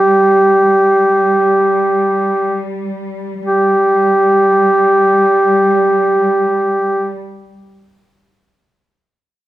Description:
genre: caucasian folk, Caucasian lament.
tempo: free time.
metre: none.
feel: none.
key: unclear.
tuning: A4 = 439 Hz.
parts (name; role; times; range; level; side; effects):
mellow duduk; melody; 0.0-7.2 s; G4; -10 LUFS; right 1 dB; none.
warm studio cello section; drone; 0.0-7.2 s; G3; -21 LUFS; left 1 dB; none.
room: light reverb.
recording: close, detailed microphones.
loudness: -10 LUFS.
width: side -15 dB against mid.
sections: 0.0-3.5 A section; 3.5-9.4 B section.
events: slowing down 0.0-3.5.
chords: none.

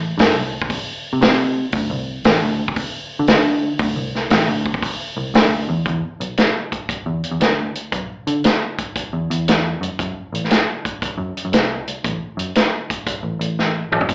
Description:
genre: blues rock power trio and southern rock.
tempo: 116 BPM.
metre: 4/4.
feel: swing 67% on 8ths.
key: E minor.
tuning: A4 = 439 Hz.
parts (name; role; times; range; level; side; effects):
vintage muted picked electric bass; bass; 0.0-14.1 s; E1 to D3; -24 LUFS; equal; none.
vintage drum kit; drums; 0.2-14.1 s; hi-hat, kick drum, snare drum, toms; -21 LUFS; equal; none.
room: moderate club reverb, RT60 0.7 s.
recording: live gig heard through the venue's PA, club reverb, AM radio sound.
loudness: -20 LUFS.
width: mono.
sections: 0.0-5.9 A section; 5.9-14.1 B section.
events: drum fill 13.6-14.1.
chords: none.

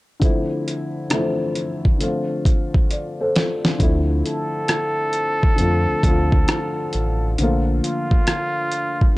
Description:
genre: lo-fi hip hop.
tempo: 67 BPM.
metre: 4/4.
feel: swing 64% on 16ths.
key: D minor.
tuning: A4 = 440 Hz.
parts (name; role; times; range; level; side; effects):
dark upright piano; accompaniment; 0.2-9.2 s; D3 to D5; -23 LUFS; left 2 dB; low-pass filter.
dusty soul sampler-style drum kit; drums; 0.2-9.2 s; hi-hat, kick drum, rim click, snare drum; -18 LUFS; equal; overdrive, vintage 12-bit sampler grit.
round analog bass; bass; 3.8-7.8 s; A1 to F2; -20 LUFS; equal; none.
trumpet with plunger mute; melody; 4.3-9.2 s; F4 to A4; -24 LUFS; equal; low-pass filter.
room: little or no reverb.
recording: dry, gritty hardware recording, cassette tape.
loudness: -18 LUFS.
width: side -20 dB against mid.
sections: 0.2-3.8 A section; 3.8-9.2 B section.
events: drum fill 2.9-3.8.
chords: 0.2 Dm9; 2.0 F6; 3.8 Dm9; 5.6 F6; 7.4 Bbmaj7.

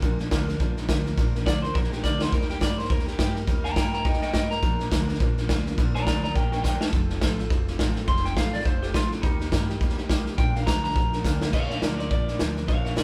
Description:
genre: rockabilly.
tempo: 209 BPM.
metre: 4/4.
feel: swing 59% on 8ths.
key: Bb major.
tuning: A4 = 441 Hz.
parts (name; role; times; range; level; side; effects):
picked steel-string acoustic guitar; accompaniment; 0.0-13.0 s; Bb2 to Bb4; -35 LUFS; equal; none.
upright bass; bass; 0.0-13.0 s; F1 to G2; -33 LUFS; equal; none.
raw garage drum kit; drums; 0.0-13.0 s; crash cymbal, hi-hat, kick drum, snare drum; -27 LUFS; equal; none.
electric guitar through a small old amp; melody; 1.5-13.0 s; D4 to C6; -32 LUFS; equal; none.
room: moderate large studio reverb, RT60 1.2 s.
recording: band playing live in one room.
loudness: -25 LUFS.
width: mono.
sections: 0.0-11.5 A section; 11.5-13.0 B section.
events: clean electric guitar solo 0.0-11.5; drum fill 2.0, 6.6, 11.2.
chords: 0.0 Bb; 2.3 Eb; 4.6 Bb; 6.9 F; 9.2 Eb; 10.4 Bb.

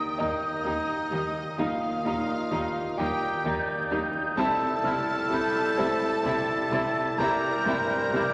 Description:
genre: cinematic, emotional film score for orchestra.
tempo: 43 BPM (dotted quarters).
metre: 6/8.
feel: rubato.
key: unclear.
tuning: A4 = 440 Hz.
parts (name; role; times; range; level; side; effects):
bright symphonic violin section; second line; 0.0-8.3 s; Eb5 to Bb5; -38 LUFS; equal; none.
hollow concert flute; second line; 0.0-8.3 s; Eb6 to A6; -34 LUFS; equal; none.
warm oboe; second line; 0.0-8.3 s; C5 to G5; -38 LUFS; equal; none.
dark baby grand piano; accompaniment; 0.0-8.3 s; C2 to Bb5; -34 LUFS; equal; none.
warm French horn section; sustained chords; 0.0-8.3 s; E3 to E4; -39 LUFS; equal; none.
rich studio violin section; melody; 0.2-8.2 s; Eb4 to E4; -37 LUFS; equal; none.
bright clarinet; second line; 0.2-8.3 s; Eb4 to Bb4; -36 LUFS; equal; none.
rich symphonic viola section; accompaniment; 0.2-8.2 s; G3 to C4; -38 LUFS; equal; none.
clear symphonic double bass section; bass; 0.2-8.2 s; C2 to Eb2; -44 LUFS; equal; none.
rich symphonic cello section; bass; 0.2-8.2 s; C3 to Eb3; -39 LUFS; equal; none.
room: wet church reverb, RT60 2.9 s.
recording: vinyl crackle.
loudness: -27 LUFS.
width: mono.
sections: 0.0-8.3 A section.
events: none.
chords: 0.0 Eb; 4.4 C.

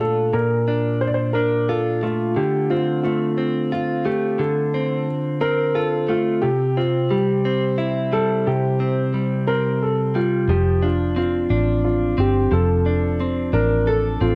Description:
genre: pop.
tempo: 59 BPM (dotted quarters).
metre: 6/8.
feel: straight.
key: F major.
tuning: A4 = 440 Hz.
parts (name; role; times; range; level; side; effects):
warm concert grand piano; melody; 0.0-14.4 s; F4 to D5; -24 LUFS; equal; cassette tape.
direct-recorded clean electric guitar; accompaniment; 0.0-14.4 s; Bb2 to A4; -24 LUFS; equal; lush chorus.
vintage muted fingered electric bass; bass; 10.5-14.4 s; F1 to A1; -23 LUFS; equal; none.
room: light reverb, studio reverb.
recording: home recording on cassette.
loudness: -20 LUFS.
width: mono.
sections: 0.0-14.4 A section.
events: none.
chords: 0.0 Bbmaj7; 2.4 Dm7; 6.4 C; 10.5 F6.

